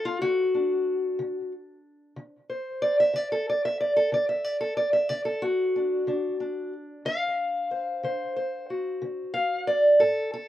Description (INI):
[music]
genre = acoustic country blues, solo or duo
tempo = 61 BPM (dotted quarters)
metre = 12/8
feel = straight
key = D mixolydian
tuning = A4 = 440 Hz
[part]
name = fingerpicked steel-string acoustic guitar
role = solo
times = 0.0-10.5 s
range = A2 to F5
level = -24 LUFS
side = equal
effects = none
[sound]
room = light reverb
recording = recorded outdoors, with no room sound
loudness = -23 LUFS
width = side -13 dB against mid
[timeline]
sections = 0.0-10.5 A section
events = steel-string acoustic guitar solo 0.0-10.5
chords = 0.0 D7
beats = 0.20 1.18 | 2.16 3.14 4.12 5.10 | 6.08 7.05 8.03 9.01 | 9.99